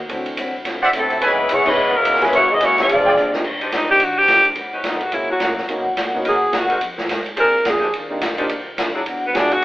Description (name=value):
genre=jazz, big band swing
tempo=214 BPM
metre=4/4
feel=swing 60% on 8ths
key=unclear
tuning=A4 = 440 Hz
part: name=upright bass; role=bass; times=0.0-9.6 s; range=Gb1 to B#2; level=-42 LUFS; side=equal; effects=none
part: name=picked steel-string acoustic guitar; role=accompaniment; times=0.1-9.6 s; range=F#2 to G4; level=-28 LUFS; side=left 1 dB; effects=none
part: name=warm upright piano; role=accompaniment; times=0.1-9.6 s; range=E3 to G#4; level=-25 LUFS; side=equal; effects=none
part: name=swinging big-band drum kit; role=drums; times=0.1-9.6 s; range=crash cymbal, hi-hat, kick drum, ride cymbal, snare drum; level=-24 LUFS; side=equal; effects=none
part: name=clear trumpet section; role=stabs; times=0.8-3.1 s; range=G#4 to G#5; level=-19 LUFS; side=right 1 dB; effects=none
part: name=clear trombone section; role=second line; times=0.9-3.3 s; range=B2 to D#4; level=-24 LUFS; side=equal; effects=none
part: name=mellow saxophone section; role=melody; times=1.0-3.3 s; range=F#3 to D#5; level=-15 LUFS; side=left 1 dB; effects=none
part: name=clear saxophone section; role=sustained chords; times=3.6-9.0 s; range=Fb3 to Cb5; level=-27 LUFS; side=equal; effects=none
part: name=bright alto saxophone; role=melody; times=3.8-9.6 s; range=B3 to Bb4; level=-16 LUFS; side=equal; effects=none
room=wet large studio reverb, RT60 1.0 s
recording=band playing live in one room, telephone sound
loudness=-15 LUFS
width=side -17 dB against mid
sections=0.0-3.4 A section; 3.4-9.6 B section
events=band accent 1.6; drum fill 3.2; alto saxophone solo 3.4-9.6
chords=0.1 D9; 1.2 C#m7; 2.3 F#7; 2.9 A#13; 3.4 Ebmaj9; 4.6 Dbm9; 5.1 Gb7; 5.7 Bmaj7; 6.8 Fm9; 7.4 Bb7; 7.9 Ebmaj9; 9.1 E9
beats=| 0.09 0.37 0.65 0.93 | 1.21 1.49 1.77 2.05 | 2.33 2.60 2.88 3.17 | 3.44 3.73 4.01 4.29 | 4.57 4.85 5.13 5.41 | 5.69 5.97 6.25 6.53 | 6.81 7.09 7.38 7.66 | 7.94 8.22 8.50 8.78 | 9.06 9.34 9.62